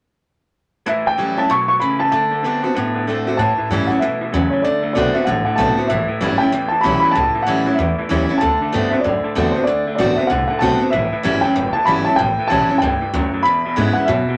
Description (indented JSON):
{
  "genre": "rockabilly",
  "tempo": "191 BPM",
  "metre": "4/4",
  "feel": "swing 62% on 8ths",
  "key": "A mixolydian",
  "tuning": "A4 = 440 Hz",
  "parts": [
    { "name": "dark upright piano", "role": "melody", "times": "0.9-14.4 s", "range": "C5 to C#6", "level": "-21 LUFS", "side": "equal", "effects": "none" },
    { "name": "picked steel-string acoustic guitar", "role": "accompaniment", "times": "0.9-14.4 s", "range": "E2 to F#4", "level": "-22 LUFS", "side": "equal", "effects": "none" },
    { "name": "electric guitar through a small old amp", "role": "riff", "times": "0.9-14.4 s", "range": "E2 to B3", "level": "-27 LUFS", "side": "equal", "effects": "none" },
    { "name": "upright bass", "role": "bass", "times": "3.4-14.3 s", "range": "F#1 to A2", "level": "-26 LUFS", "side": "equal", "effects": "none" }
  ],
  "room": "moderate studio ambience, RT60 0.5 s",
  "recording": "none",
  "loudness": "-18 LUFS",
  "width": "mono",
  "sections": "0.9-3.4 A section; 3.4-14.4 B section",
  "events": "none",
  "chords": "0.9 A7; 2.1 D7; 3.4 A7; 4.6 D7; 5.9 A7; 8.4 D7; 10.9 A7; 13.5 E7"
}